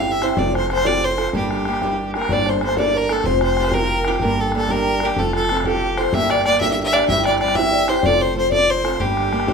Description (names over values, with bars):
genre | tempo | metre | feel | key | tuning
celtic folk, Celtic jig | 125 BPM (dotted quarters) | 6/8 | straight | G dorian | A4 = 440 Hz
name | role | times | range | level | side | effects
clear fiddle | melody | 0.0-9.5 s | G4 to F5 | -20 LUFS | equal | none
picked old ladder-braced acoustic guitar | accompaniment | 0.0-9.5 s | G2 to A4 | -22 LUFS | right 4 dB | none
upright bass | bass | 0.0-9.5 s | F1 to G1 | -27 LUFS | equal | none
mellow hollow baroque flute | second line | 0.1-9.5 s | G4 to E5 | -23 LUFS | left 4 dB | none
bodhran | percussion | 0.1-9.5 s | none | -25 LUFS | left 2 dB | none
room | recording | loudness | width
moderate studio reverb, RT60 0.7 s | minimal, uncompressed stereo recording | -16 LUFS | side -5 dB against mid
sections
0.0-2.3 A section; 2.3-9.5 A section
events
none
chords
0.4 F; 1.3 Gm; 2.3 Gmadd9; 3.3 Fsus2; 4.2 Gm; 5.2 F; 6.1 Gm; 7.1 Cadd9/G; 8.0 F; 9.0 Gm